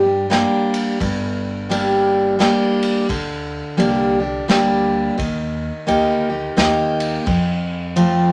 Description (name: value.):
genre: honky-tonk and classic country.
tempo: 86 BPM.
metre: 3/4.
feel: swing 61% on 8ths.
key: G minor.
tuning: A4 = 440 Hz.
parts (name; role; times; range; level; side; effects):
picked steel-string acoustic guitar; accompaniment; 0.0-8.3 s; F2 to G4; -19 LUFS; equal; none.
upright bass; bass; 0.0-8.3 s; G1 to G2; -32 LUFS; equal; none.
unplugged drum kit; drums; 0.3-8.2 s; kick drum, ride cymbal, snare drum; -28 LUFS; equal; none.
room: moderate studio reverb, RT60 0.6 s.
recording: none.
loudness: -19 LUFS.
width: mono.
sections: 1.0-8.3 A section.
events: none.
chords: 0.0 Gm; 5.2 Eb; 7.3 F.